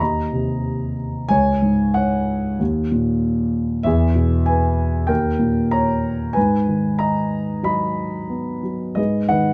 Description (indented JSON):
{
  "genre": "classical, lyrical solo piano",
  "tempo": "94 BPM",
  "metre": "4/4",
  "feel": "uneven beats, rubato",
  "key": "G# minor",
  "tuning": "A4 = 439 Hz",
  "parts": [
    { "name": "dark concert grand piano", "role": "solo", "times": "0.0-9.5 s", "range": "C#2 to B5", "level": "-20 LUFS", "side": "equal", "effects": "none" }
  ],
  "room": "light reverb",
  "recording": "close, detailed microphones",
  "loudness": "-20 LUFS",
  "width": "mono",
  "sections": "0.0-9.0 A section",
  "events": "none",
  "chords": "0.0 Cm7/Eb; 1.3 C#sus4; 2.6 D#5; 3.9 E; 5.1 D#7; 6.4 G#m7; 9.0 G#m"
}